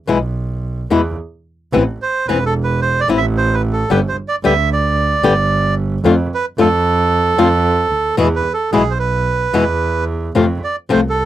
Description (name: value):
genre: tango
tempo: 111 BPM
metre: 4/4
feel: rubato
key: A minor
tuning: A4 = 440 Hz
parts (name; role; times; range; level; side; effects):
- flamenco guitar; accompaniment; 0.1-11.0 s; B2 to G4; -13 LUFS; left 4 dB; none
- clear double bass; bass; 0.1-11.3 s; E1 to F2; -18 LUFS; right 2 dB; none
- bandoneon; melody; 2.0-11.3 s; G#4 to E5; -17 LUFS; right 4 dB; none
room: little or no reverb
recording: dry, close 1970s-style studio recording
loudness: -14 LUFS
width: side -13 dB against mid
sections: 0.0-1.7 A section; 1.7-11.3 B section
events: break 1.2-1.7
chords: 0.0 E5; 1.7 Am; 3.9 G5; 6.0 Dm/F; 8.2 E5; 10.4 F